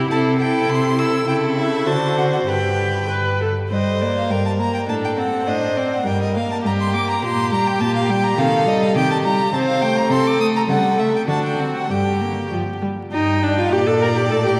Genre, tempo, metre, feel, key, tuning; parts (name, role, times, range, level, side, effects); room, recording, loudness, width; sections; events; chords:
quick classical-period movement for string quartet; 102 BPM; 2/4; rubato; G major, G minor from 3.7 s; A4 = 442 Hz
clear violin; second line; 0.0-14.6 s; F#4 to G5; -25 LUFS; equal
clear viola; accompaniment; 0.0-14.6 s; Eb3 to B4; -24 LUFS; equal
warm cello; bass; 0.0-14.6 s; G2 to D3; -25 LUFS; equal
clear violin; melody; 0.1-14.6 s; D5 to E6; -25 LUFS; equal
wet cathedral reverb, RT60 4.2 s; recorded in a church or concert hall, vinyl crackle; -19 LUFS; mono
0.0-3.7 A section; 3.7-13.1 B section; 13.1-14.6 B section
0.1 Am/C; 1.3 A/C#; 1.9 D7; 2.5 G; 3.7 Gm; 4.9 D5/A; 6.1 Gm; 7.2 Gm/Bb; 8.4 Cm; 9.5 C5; 10.7 A7/C#; 11.3 D7; 11.9 Gm